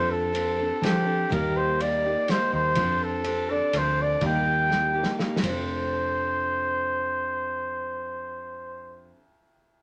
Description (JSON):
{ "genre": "folk rock and heartland rock", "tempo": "124 BPM", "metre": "3/4", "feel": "straight", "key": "F mixolydian", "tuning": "A4 = 439 Hz", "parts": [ { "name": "warm flugelhorn", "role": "melody", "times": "0.0-9.1 s", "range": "G4 to G5", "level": "-28 LUFS", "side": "equal", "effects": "none" }, { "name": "picked steel-string acoustic guitar", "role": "accompaniment", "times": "0.0-9.2 s", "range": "Eb3 to A4", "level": "-33 LUFS", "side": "equal", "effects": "none" }, { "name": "hollow-body short-scale picked electric bass", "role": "bass", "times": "0.0-9.1 s", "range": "F1 to F3", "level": "-34 LUFS", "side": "equal", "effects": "none" }, { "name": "natural country drum kit", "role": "drums", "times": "0.3-5.5 s", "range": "kick drum, ride cymbal, rim click, snare drum", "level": "-34 LUFS", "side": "equal", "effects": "none" } ], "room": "wet studio ambience, RT60 0.5 s", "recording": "none", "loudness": "-26 LUFS", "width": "mono", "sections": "0.0-5.7 A section; 5.7-8.6 B section", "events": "drum fill 4.7-5.7", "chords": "0.0 F6; 1.3 Eb; 2.8 F6; 4.2 Eb; 5.4 F6" }